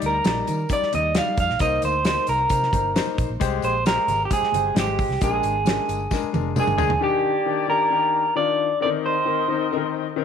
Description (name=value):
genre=uptempo 1960s-style soul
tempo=133 BPM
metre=4/4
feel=straight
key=Eb major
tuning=A4 = 440 Hz
part: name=clear grand piano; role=accompaniment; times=0.0-10.2 s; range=D3 to D5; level=-27 LUFS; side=left 11 dB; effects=none
part: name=vintage muted fingered electric bass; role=bass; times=0.0-7.0 s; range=F1 to Eb3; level=-28 LUFS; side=right 1 dB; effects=none
part: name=natural country drum kit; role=drums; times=0.0-7.0 s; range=hi-hat, kick drum, snare drum, toms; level=-25 LUFS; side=right 1 dB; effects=none
part: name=congas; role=percussion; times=0.0-6.8 s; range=none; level=-37 LUFS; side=right 11 dB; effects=none
part: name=tambourine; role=percussion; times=0.0-6.9 s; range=none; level=-43 LUFS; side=left 13 dB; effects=none
part: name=electric guitar through a small old amp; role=melody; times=0.1-9.9 s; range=G4 to F5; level=-22 LUFS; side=right 2 dB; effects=none
part: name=mellow saxophone section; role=second line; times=6.6-10.2 s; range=F3 to Eb5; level=-29 LUFS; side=left 12 dB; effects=none
room=moderate echo chamber reverb, RT60 1.4 s, small room ambience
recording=1960s-style stereo with parts hard left and right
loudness=-19 LUFS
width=side -7 dB against mid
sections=0.0-7.0 A section; 7.0-10.2 B section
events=band accent 5.2-7.0; drum fill 6.1-7.0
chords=0.0 Ebmaj7; 1.6 Cm7; 3.4 Abmaj7; 5.2 Bb7; 7.0 Ebmaj7; 8.8 Cm7